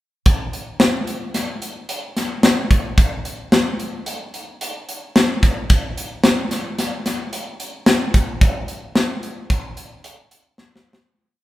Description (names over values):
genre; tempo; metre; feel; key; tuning
progressive instrumental, progressive; 110 BPM; 5/4; straight; none; none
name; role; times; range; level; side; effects
tight metal drum kit; drums; 0.3-11.1 s; hi-hat, kick drum, snare drum; -17 LUFS; equal; none
room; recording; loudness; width
light reverb; band playing live in one room; -17 LUFS; side -16 dB against mid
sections
0.3-11.1 A section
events
fade-out 8.4-11.1; drum fill 10.6-11.1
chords
none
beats
| 0.27 0.81 1.35 1.90 2.44 | 2.98 3.53 4.07 4.62 5.16 | 5.70 6.25 6.79 7.33 7.88 | 8.42 8.96 9.50 10.04 10.59